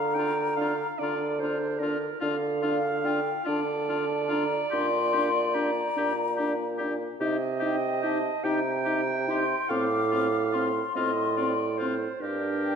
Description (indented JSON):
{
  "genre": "classical, slow romantic movement for wind quintet",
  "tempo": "48 BPM (dotted quarters)",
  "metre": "12/8",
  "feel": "rubato",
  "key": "Bb major",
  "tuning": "A4 = 441 Hz",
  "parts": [
    { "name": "mellow hollow concert flute", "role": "melody", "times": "0.0-12.8 s", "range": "F5 to D6", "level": "-31 LUFS", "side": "left 8 dB", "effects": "none" },
    { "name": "clear clarinet", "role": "accompaniment", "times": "0.0-12.8 s", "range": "Bb4 to G5", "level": "-32 LUFS", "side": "right 7 dB", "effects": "none" },
    { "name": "mellow bassoon", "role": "bass", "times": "0.0-12.8 s", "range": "G2 to D3", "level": "-29 LUFS", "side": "right 3 dB", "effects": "none" },
    { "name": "clear oboe", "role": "second line", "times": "0.2-12.8 s", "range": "F4 to G4", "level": "-35 LUFS", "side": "left 4 dB", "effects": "none" },
    { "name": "warm French horn", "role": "accompaniment", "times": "0.2-12.8 s", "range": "C4 to Eb4", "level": "-32 LUFS", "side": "left 1 dB", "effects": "none" }
  ],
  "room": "moderate scoring stage reverb, RT60 1.6 s",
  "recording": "dark, warm production, lossy compression artefacts",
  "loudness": "-25 LUFS",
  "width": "side -6 dB against mid",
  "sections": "0.0-12.8 A section",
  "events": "none",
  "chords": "0.0 Bb/D; 4.7 Gm/Bb; 7.2 Cm; 9.7 F/A; 12.2 Gm"
}